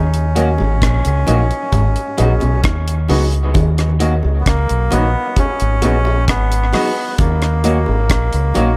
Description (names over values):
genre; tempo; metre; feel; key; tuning
dub reggae; 66 BPM; 4/4; straight; Eb minor; A4 = 442 Hz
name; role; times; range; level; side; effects
melodica; melody; 0.0-8.8 s; Bb3 to Db4; -24 LUFS; equal; tape echo
semi-hollow electric guitar; riff; 0.0-3.8 s; Ab2 to Eb3; -24 LUFS; equal; none
deep dub fingered electric bass; bass; 0.0-8.8 s; Ab1 to Eb2; -18 LUFS; equal; none
deep reggae drum kit; drums; 0.1-8.8 s; hi-hat, kick drum, rim click; -21 LUFS; equal; none
electric guitar at the edge of break-up; accompaniment; 0.4-8.7 s; Eb3 to Gb4; -26 LUFS; equal; subtle chorus, tape echo
warm upright piano; stabs; 0.4-8.7 s; Gb4 to Eb5; -26 LUFS; equal; tape echo
bongos; percussion; 0.6-8.8 s; none; -30 LUFS; equal; tape echo
room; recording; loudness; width
light reverb; none; -16 LUFS; mono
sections
0.0-8.8 A section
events
none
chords
0.0 Ebm7; 1.7 Abm7; 3.5 Ebm7; 5.4 Abm7; 7.2 Ebm7